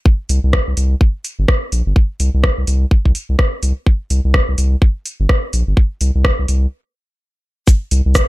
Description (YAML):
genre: minimal techno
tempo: 126 BPM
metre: 4/4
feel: swing 60% on 16ths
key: unclear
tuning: A4 = 444 Hz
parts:
  - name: electronic kick drum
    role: drums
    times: 0.1-8.3 s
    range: none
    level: -12 LUFS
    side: equal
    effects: none
  - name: saturated sub bass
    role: bass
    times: 0.3-8.2 s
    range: G1 to C2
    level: -14 LUFS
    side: equal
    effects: sidechain pumping
  - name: booming analog drum machine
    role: drums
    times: 0.3-8.3 s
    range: hi-hat, rim click, shaker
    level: -20 LUFS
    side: equal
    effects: none
room: little or no reverb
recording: none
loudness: -13 LUFS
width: side -19 dB against mid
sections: 0.0-7.7 A section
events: stop 6.7-7.7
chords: none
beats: | 0.06 0.53 1.01 1.48 | 1.96 2.44 2.91 3.39 | 3.87 4.34 4.82 5.29 | 5.77 6.25 6.72 7.20 | 7.67 8.15